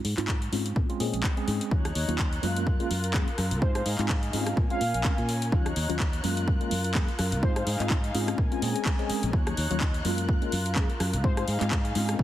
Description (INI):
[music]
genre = filtered disco house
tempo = 126 BPM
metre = 4/4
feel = swing 56% on 16ths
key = unclear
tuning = A4 = 440 Hz
[part]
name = fingered electric bass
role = bass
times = 0.0-12.2 s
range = Bb1 to Bb2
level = -30 LUFS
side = equal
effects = tube saturation, sidechain pumping, low-pass filter
[part]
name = house drum kit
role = drums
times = 0.0-12.2 s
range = handclaps, hi-hat, rim click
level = -33 LUFS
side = left 1 dB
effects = overdrive, sidechain pumping on hats
[part]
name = mellow tine electric piano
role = accompaniment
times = 0.2-12.2 s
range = Gb3 to Bb4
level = -32 LUFS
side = equal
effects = medium stereo tremolo, phaser, sidechain pumping, low-pass filter
[part]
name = electronic kick drum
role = drums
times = 0.3-12.2 s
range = none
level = -26 LUFS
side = equal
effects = overdrive
[part]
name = dark studio violin section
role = sustained chords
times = 1.7-12.2 s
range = Db4 to Gb6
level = -34 LUFS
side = left 1 dB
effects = sidechain pumping, low-pass filter
[part]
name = analog synth brass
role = melody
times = 3.6-7.6, 11.2-11.4 s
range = C5 to F5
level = -35 LUFS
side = equal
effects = chorus, sidechain pumping, low-pass filter, dub echo
[sound]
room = light reverb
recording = heavily compressed radio sound, multiband compression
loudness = -24 LUFS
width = side -13 dB against mid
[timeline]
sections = 0.0-12.2 A section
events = filter sweep 0.0-12.2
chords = 0.0 Fm7/Ab; 0.8 Bbm7; 1.7 Ebm7; 2.4 Gbmaj7; 3.6 Fm7/Ab; 4.6 Bbm7; 5.5 Ebm7; 6.2 Gbmaj7; 7.4 Fm7/Ab; 8.4 Bbm7; 9.3 Ebm7; 10.0 Gbmaj7; 11.2 Fm7/Ab